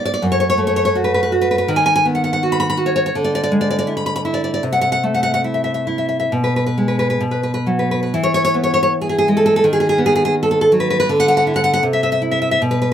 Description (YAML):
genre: romantic piece for solo classical guitar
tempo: 60-86 BPM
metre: 2/4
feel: rubato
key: E major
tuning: A4 = 436 Hz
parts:
  - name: nylon-string guitar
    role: solo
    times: 0.0-12.9 s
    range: F#2 to B5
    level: -14 LUFS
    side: equal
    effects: none
room: light reverb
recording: close, detailed microphones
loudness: -14 LUFS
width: side -9 dB against mid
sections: 0.0-8.1 A section; 8.1-12.9 B section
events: none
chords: 0.3 F#m; 1.7 B/D#; 3.1 E7/D; 4.6 Am/C; 6.3 G#m/B; 7.2 B5; 8.1 E; 9.6 B/D#; 11.1 D; 11.8 C